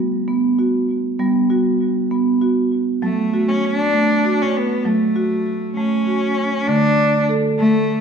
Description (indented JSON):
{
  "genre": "world meditative, meditative tuned percussion",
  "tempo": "66 BPM (dotted quarters)",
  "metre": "6/8",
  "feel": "straight",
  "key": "unclear",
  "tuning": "A4 = 440 Hz",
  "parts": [
    { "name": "marimba with medium mallets", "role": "arpeggios", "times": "0.0-8.0 s", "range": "D3 to A4", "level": "-17 LUFS", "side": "right 2 dB", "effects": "tape echo" },
    { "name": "rich cello", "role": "melody", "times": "3.0-8.0 s", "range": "A3 to D4", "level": "-19 LUFS", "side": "left 2 dB", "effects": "none" }
  ],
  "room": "wet echo chamber reverb, RT60 2.1 s",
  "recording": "dark, warm production",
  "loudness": "-16 LUFS",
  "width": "side -6 dB against mid",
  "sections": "0.0-6.7 A section; 6.7-8.0 B section",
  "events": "none",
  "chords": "0.0 G; 3.0 F#m; 6.7 D5",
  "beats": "0.29 | 1.20 2.12 | 3.03 3.94 | 4.86 5.77 | 6.68 7.59"
}